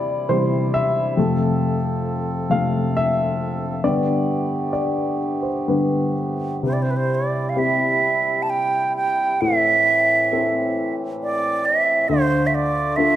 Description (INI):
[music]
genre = celtic folk, Celtic slow air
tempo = 66 BPM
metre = 3/4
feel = uneven beats, rubato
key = C major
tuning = A4 = 441 Hz
[part]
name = warm upright piano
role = accompaniment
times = 0.0-13.2 s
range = D2 to F5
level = -21 LUFS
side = left 2 dB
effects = none
[part]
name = mellow accordion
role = sustained chords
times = 0.0-13.2 s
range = A2 to A4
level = -28 LUFS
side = right 3 dB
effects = none
[part]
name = bright baroque flute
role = melody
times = 6.7-13.2 s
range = B4 to A5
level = -18 LUFS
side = right 3 dB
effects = none
[sound]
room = moderate recital hall reverb, RT60 1.4 s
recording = none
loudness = -18 LUFS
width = side -12 dB against mid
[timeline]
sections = 0.0-6.6 A section; 6.6-13.2 B section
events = upright piano solo 0.0-6.6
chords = 0.0 C; 1.2 F; 3.8 Gadd9; 6.6 C; 9.4 Am; 12.1 Dm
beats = 0.27 | 1.16 2.05 2.94 | 3.83 4.73 5.68 | 6.63 7.56 8.49 | 9.40 10.30 11.20 | 12.09 12.97